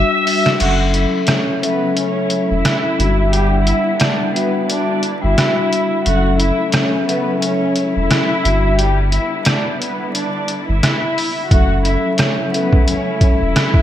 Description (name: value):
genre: hip hop, boom-bap hip-hop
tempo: 88 BPM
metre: 4/4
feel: swing 58% on 16ths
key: unclear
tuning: A4 = 439 Hz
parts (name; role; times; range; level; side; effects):
- dark studio violin section; melody; 0.0-13.8 s; G3 to E6; -20 LUFS; equal; high-pass filter, low-pass filter
- vibraphone with soft mallets; accompaniment; 0.0-13.8 s; F#3 to F#5; -18 LUFS; left 2 dB; cassette tape, high-pass filter, low-pass filter
- warm sub bass; bass; 0.0-13.5 s; E1 to G1; -17 LUFS; equal; none
- trip hop sampler-style drum kit; drums; 0.3-13.8 s; crash cymbal, hi-hat, kick drum, rim click, snare drum; -17 LUFS; equal; gated reverb
- warm studio string section; sustained chords; 0.6-13.8 s; C#3 to E4; -27 LUFS; left 1 dB; high-pass filter, low-pass filter
room: moderate plate reverb, RT60 2.4 s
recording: bright 1980s-style digital production, vinyl crackle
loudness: -14 LUFS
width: side -11 dB against mid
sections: 0.6-13.8 A section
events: drum fill 0.0-0.6; break 0.6-11.5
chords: 0.0 Em7/G; 0.6 F#m7; 3.0 Em7/G; 6.1 F#m7; 8.4 Em7/G; 11.5 F#m7